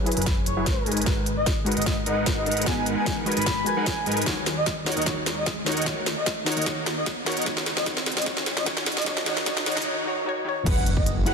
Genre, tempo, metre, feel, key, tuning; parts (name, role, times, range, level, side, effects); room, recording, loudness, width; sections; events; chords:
future bass; 150 BPM; 4/4; half-time; G# minor; A4 = 440 Hz
soft round pluck; accompaniment; 0.0-11.3 s; D#3 to A#5; -31 LUFS; left 2 dB; chorus, sidechain pumping, digital delay
supersaw chords; riff; 0.0-11.3 s; D#3 to G#5; -30 LUFS; equal; cassette tape, sidechain pumping, low-pass filter, digital delay
riser and impact; sound effects; 1.6-11.3 s; -35 LUFS; right 1 dB
trap drum kit; drums; 0.1-11.3 s; crash cymbal, hi-hat, snare drum; -28 LUFS; equal; high-pass filter on snare, studio reverb, high-pass filter on hats, high-pass filter on cymbals
breathy flute-like synth lead; melody; 0.2-11.1 s; B4 to B5; -30 LUFS; equal; tremolo, lush chorus, sidechain pumping, ping-pong delay
fat analog bass; bass; 0.2-11.3 s; F#1 to G#2; -32 LUFS; equal; sidechain pumping
electronic kick drum; drums; 0.3-11.0 s; -28 LUFS; equal; studio reverb
airy dreamy lead; arpeggios; 10.7-11.3 s; F#5; -31 LUFS; right 2 dB; chorus, sidechain pumping, digital delay
moderate lush hall reverb, RT60 2.5 s; dense, heavily limited modern master, high-pass filter; -22 LUFS; side -5 dB against mid
0.0-10.7 A section
build-up 0.0-10.7; drum fill 0.0-9.9; filter sweep on supersaw synth 0.0-10.7; filter sweep 0.0-10.7; riser 1.6-9.9; impact 10.7-11.3
0.0 F#9sus4; 0.9 G#m9; 4.3 D#m7; 7.5 C#sus2; 10.7 F#9sus4